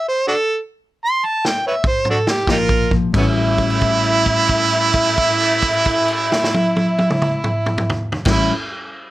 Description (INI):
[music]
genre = electric blues shuffle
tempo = 88-106 BPM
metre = 4/4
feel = swing 66% on 8ths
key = A mixolydian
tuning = A4 = 440 Hz
[part]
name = mellow harmonica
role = melody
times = 0.0-8.5 s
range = B3 to C6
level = -19 LUFS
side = equal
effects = overdrive
[part]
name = vintage drum kit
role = drums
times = 1.4-8.4 s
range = crash cymbal, kick drum, snare drum, toms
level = -20 LUFS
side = equal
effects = none
[part]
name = warm harmonica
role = second line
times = 2.5-8.5 s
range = E4 to F4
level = -19 LUFS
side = right 4 dB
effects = overdrive
[part]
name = mellow electric guitar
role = riff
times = 2.5-8.5 s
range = A2 to F#4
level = -23 LUFS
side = left 3 dB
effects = spring reverb
[part]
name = fingered electric bass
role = bass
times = 2.5-8.5 s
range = A1 to Bb1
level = -24 LUFS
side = equal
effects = none
[sound]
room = light reverb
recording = none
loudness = -15 LUFS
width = side -16 dB against mid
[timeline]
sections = 0.0-3.2 A section; 3.2-8.6 B section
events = slowing down 0.0-3.2; stop 0.0-2.5; drum fill 0.6-3.2; held note 3.2-8.2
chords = 0.0 A5; 2.5 Bb5; 3.2 A6